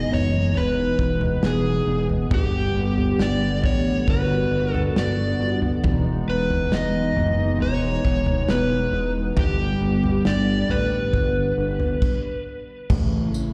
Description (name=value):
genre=dream pop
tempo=68 BPM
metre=4/4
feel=straight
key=unclear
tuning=A4 = 440 Hz
part: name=overdriven slide guitar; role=melody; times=0.0-12.4 s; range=G4 to D#5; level=-28 LUFS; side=equal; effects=tape echo
part: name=hollow soft pad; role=sustained chords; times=0.0-13.5 s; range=C#3 to G4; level=-29 LUFS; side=equal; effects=chorus
part: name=mellow electric guitar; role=arpeggios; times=0.0-13.5 s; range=G2 to D#4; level=-30 LUFS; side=equal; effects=subtle chorus, tape echo
part: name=fat analog bass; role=bass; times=0.0-13.3 s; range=E1 to A1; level=-27 LUFS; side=equal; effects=none
part: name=loose indie drum kit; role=drums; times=0.1-13.5 s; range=crash cymbal, kick drum, snare drum, tambourine, toms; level=-27 LUFS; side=equal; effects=none
room=moderate concert hall reverb, RT60 2.2 s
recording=played on a big sound system in a bare room, large studio reverb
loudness=-22 LUFS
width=mono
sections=0.0-12.9 A section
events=stop 12.0-12.9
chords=0.0 Emaj7; 2.3 G; 5.8 Emaj7; 9.4 G; 12.9 A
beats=0.55 1.43 | 2.31 3.20 4.08 4.96 | 5.84 6.73 7.61 8.49 | 9.37 10.26 11.14 12.02 | 12.90